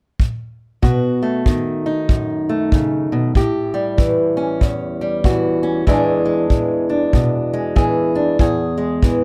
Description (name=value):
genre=acoustic country blues, solo or duo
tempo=95 BPM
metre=4/4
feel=swing 61% on 8ths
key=unclear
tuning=A4 = 441 Hz
part: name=kick drum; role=drums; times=0.2-9.2 s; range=none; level=-20 LUFS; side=equal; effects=none
part: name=fingerpicked old ladder-braced acoustic guitar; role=melody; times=0.8-9.2 s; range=E2 to G#4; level=-19 LUFS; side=equal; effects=none
room=light reverb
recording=close, detailed microphones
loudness=-18 LUFS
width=mono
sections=0.8-9.2 A section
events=none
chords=0.0 N.C.; 0.8 B7; 3.3 A7; 5.9 E7